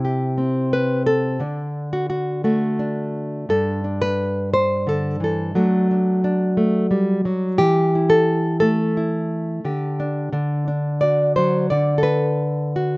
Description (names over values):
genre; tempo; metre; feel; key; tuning
folk, solo fingerstyle acoustic guitar; 88 BPM; 3/4; rubato; unclear; A4 = 440 Hz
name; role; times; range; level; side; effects
nylon-string guitar; solo; 0.0-13.0 s; G2 to D5; -18 LUFS; equal; none
room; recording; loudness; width
light reverb; recorded outdoors, with no room sound, nothing above 8.0 kHz; -18 LUFS; side -25 dB against mid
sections
0.0-11.7 A section; 11.7-13.0 B section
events
none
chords
0.0 C; 1.4 D; 3.5 Gsus2; 5.5 D/F#; 7.6 A5/E; 9.6 Dsus4; 10.3 D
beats
0.05 0.73 | 1.41 2.10 2.80 | 3.50 4.18 4.87 | 5.55 6.23 6.91 | 7.59 8.27 8.95 | 9.64 10.32 11.01 | 11.71 12.40